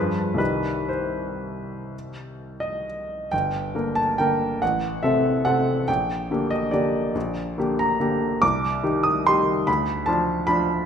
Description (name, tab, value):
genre	classical, piano waltz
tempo	113-153 BPM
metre	3/4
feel	rubato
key	C minor, G minor from 3.3 s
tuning	A4 = 438 Hz
part	clear baby grand piano	solo	0.0-10.9 s	G1 to Eb6	-21 LUFS	equal	none
room	wet recital hall reverb, RT60 1.4 s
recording	minimal, uncompressed stereo recording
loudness	-21 LUFS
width	side -7 dB against mid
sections	0.0-3.3 A section; 3.3-10.9 B section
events	none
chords	0.4 Cm; 3.3 Gm; 4.6 F#dim/A; 5.9 Gm/Bb; 8.4 Cm; 9.7 Bdim/D